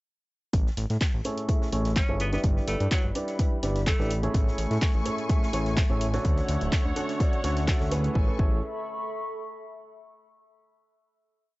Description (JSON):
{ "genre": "piano house", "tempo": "126 BPM", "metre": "4/4", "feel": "swing 53% on 16ths", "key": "A major", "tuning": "A4 = 439 Hz", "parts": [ { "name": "fat analog bass", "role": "bass", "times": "0.5-8.6 s", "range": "D1 to A2", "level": "-28 LUFS", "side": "equal", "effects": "sidechain pumping" }, { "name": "electronic kick drum", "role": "drums", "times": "0.5-8.5 s", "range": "none", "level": "-25 LUFS", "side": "equal", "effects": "overdrive" }, { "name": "open jazz drum kit", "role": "drums", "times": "0.5-8.0 s", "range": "hi-hat, snare drum", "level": "-46 LUFS", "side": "left 1 dB", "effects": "none" }, { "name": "punchy analog drum machine", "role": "drums", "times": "0.5-8.1 s", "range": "handclaps, hi-hat", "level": "-34 LUFS", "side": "equal", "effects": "none" }, { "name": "warbly tape-like pad", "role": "texture", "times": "1.2-10.0 s", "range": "D3 to C#6", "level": "-38 LUFS", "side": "equal", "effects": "chorus, built-in reverb, sidechain pumping" }, { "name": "clear upright piano", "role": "riff", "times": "1.2-8.6 s", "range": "A2 to E5", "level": "-31 LUFS", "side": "right 1 dB", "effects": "sidechain pumping, low-pass filter, analog delay" }, { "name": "bright tenor saxophone", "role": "melody", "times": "2.0-4.2 s", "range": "F#3 to C#4", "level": "-34 LUFS", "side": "equal", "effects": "analog delay" }, { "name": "rich studio string section", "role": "sustained chords", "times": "4.3-8.4 s", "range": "A3 to C#6", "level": "-36 LUFS", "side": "left 2 dB", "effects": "sidechain pumping" } ], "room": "studio ambience", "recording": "dry, gritty hardware recording, cassette tape, nothing above 7.9 kHz", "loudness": "-24 LUFS", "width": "side -20 dB against mid", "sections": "0.5-8.2 groove; 8.2-10.1 final chord", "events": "fade-in on ambient pad 0.5-8.2", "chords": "0.5 Amaj7; 2.2 G6; 4.1 Amaj7; 6.2 Dmaj7; 8.2 Amaj7" }